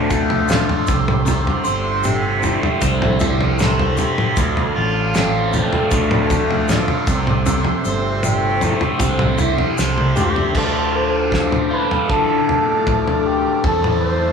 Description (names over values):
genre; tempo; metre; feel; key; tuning
psychedelic rock; 78 BPM; 4/4; straight; D minor; A4 = 440 Hz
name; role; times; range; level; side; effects
combo organ; sustained chords; 0.0-14.3 s; C4 to D6; -27 LUFS; right 4 dB; none
biting overdriven guitar; riff; 0.0-14.3 s; D2 to C5; -20 LUFS; equal; phaser
fuzz fingered electric bass; bass; 0.0-14.3 s; G1 to D3; -22 LUFS; right 1 dB; overdrive
tanpura; drone; 0.0-14.3 s; D2 to D3; -28 LUFS; left 2 dB; none
damped 70s drum kit; drums; 0.1-14.0 s; crash cymbal, kick drum, snare drum, toms; -20 LUFS; equal; none
egg shaker; percussion; 0.1-10.3 s; none; -34 LUFS; left 5 dB; none
expressive synth lead; melody; 10.2-14.3 s; F4 to C5; -20 LUFS; equal; chorus
room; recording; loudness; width
moderate large studio reverb, RT60 1.2 s; band playing live in one room, studio ambience; -15 LUFS; side -6 dB against mid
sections
0.0-10.5 A section; 10.5-14.3 B section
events
drum fill 9.8-10.5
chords
0.0 Dm7; 0.9 C; 4.4 Dm7; 7.1 C; 10.5 Dm; 13.6 Am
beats
0.50 | 1.27 2.05 2.82 3.59 | 4.37 5.14 5.91 6.68 | 7.45 8.23 9.00 9.77 | 10.54 11.32 12.09 12.87 | 13.64